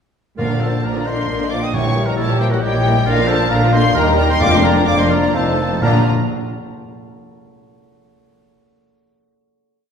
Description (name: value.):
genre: quick classical-period movement for symphony orchestra.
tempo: 133 BPM.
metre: 3/4.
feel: uneven beats.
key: Bb major.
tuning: A4 = 440 Hz.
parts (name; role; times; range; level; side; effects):
rich studio violin section; melody; 0.4-6.1 s; F5 to Eb6; -22 LUFS; left 3 dB; none.
concert flute; second line; 0.4-6.1 s; Bb4 to G5; -25 LUFS; left 1 dB; none.
rich studio violin section; second line; 0.4-6.1 s; D4 to D5; -26 LUFS; left 2 dB; none.
warm oboe; second line; 0.4-6.0 s; F4 to Eb5; -26 LUFS; right 2 dB; none.
rich studio viola section; accompaniment; 0.4-6.1 s; D3 to D4; -24 LUFS; equal; none.
dark French horn section; sustained chords; 0.4-6.0 s; F3 to Fb4; -23 LUFS; left 2 dB; none.
rich studio cello section; bass; 0.4-6.1 s; Eb2 to Bb2; -23 LUFS; right 1 dB; none.
rich studio double bass section; bass; 0.4-6.1 s; F1 to Eb2; -21 LUFS; right 2 dB; none.
timpani; percussion; 0.4-2.4, 4.4-6.0 s; F2 to Bb2; -25 LUFS; left 1 dB; none.
mellow clarinet; second line; 0.8-6.0 s; D4 to G5; -24 LUFS; left 1 dB; none.
room: wet concert hall reverb, RT60 1.8 s.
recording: heard from further back in the room.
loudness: -14 LUFS.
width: side -7 dB against mid.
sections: 0.4-5.8 A section; 5.8-7.2 final chord.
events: slowing down 2.4-5.8.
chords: 0.4 Bb; 1.7 Bbdim7; 3.1 Bb; 4.0 Eb; 4.4 Bb/F; 5.3 F7; 5.8 Bb.